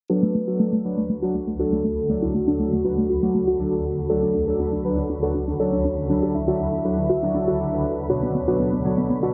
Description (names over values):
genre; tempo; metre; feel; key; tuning
progressive house; 120 BPM; 4/4; straight; D major; A4 = 440 Hz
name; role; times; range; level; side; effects
soft octave-layered synth lead; melody; 0.1-8.7 s; F#4 to E5; -29 LUFS; equal; chorus, tape echo
shimmering ambient pad; sustained chords; 1.0-9.3 s; D2 to B4; -31 LUFS; equal; chorus, built-in reverb
soft round pluck; arpeggios; 0.1-9.3 s; A3 to A4; -27 LUFS; equal; chorus, cassette tape, tape echo
soft supersaw; stabs; 0.1-9.3 s; B2 to C#5; -27 LUFS; equal; low-pass filter, tape echo
tube shaker; percussion; 0.1-9.3 s; none; -65 LUFS; equal; none
twinkling granular texture; texture; 1.2-9.3 s; B5; -49 LUFS; equal; built-in reverb
room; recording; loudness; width
moderate lush hall reverb, RT60 2.4 s; dense, heavily limited modern master, low-pass filter; -23 LUFS; mono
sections
0.1-9.3 A section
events
filter sweep on synth pluck 0.1-9.3; filter sweep on supersaw synth 0.1-9.3; filter sweep 0.1-9.3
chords
0.1 D; 8.1 Bm